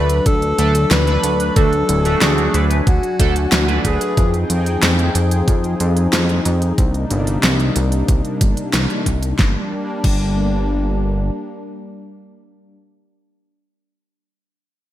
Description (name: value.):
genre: synthwave.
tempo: 92 BPM.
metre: 4/4.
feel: straight.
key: G phrygian.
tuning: A4 = 439 Hz.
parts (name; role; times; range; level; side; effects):
clear alto saxophone; melody; 0.0-4.5 s; F#4 to B4; -20 LUFS; left 1 dB; vintage 12-bit sampler grit, digital delay.
brassy analog pad; sustained chords; 0.0-12.8 s; C3 to Ab5; -23 LUFS; left 2 dB; chorus, sidechain pumping.
chorused polysynth; stabs; 0.0-4.1 s; A3 to B4; -23 LUFS; right 5 dB; phaser, ping-pong delay.
fat analog bass; bass; 0.0-11.3 s; D1 to F2; -18 LUFS; equal; sidechain pumping.
pop drum kit; drums; 0.1-10.2 s; crash cymbal, hi-hat, snare drum; -20 LUFS; equal; studio reverb, gated reverb.
electronic kick drum; drums; 0.3-10.2 s; none; -16 LUFS; equal; studio reverb.
room: light reverb.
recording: bright 1980s-style digital production.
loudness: -14 LUFS.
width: side -13 dB against mid.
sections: 0.0-9.4 A section; 9.4-12.0 B section.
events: none.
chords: 0.0 D; 4.2 Fm7; 6.8 Cm7; 9.4 Gm.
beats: 0.26 0.91 | 1.56 2.21 2.87 3.52 | 4.17 4.82 5.48 6.13 | 6.78 7.43 8.09 8.74 | 9.39 10.04 10.69 11.35.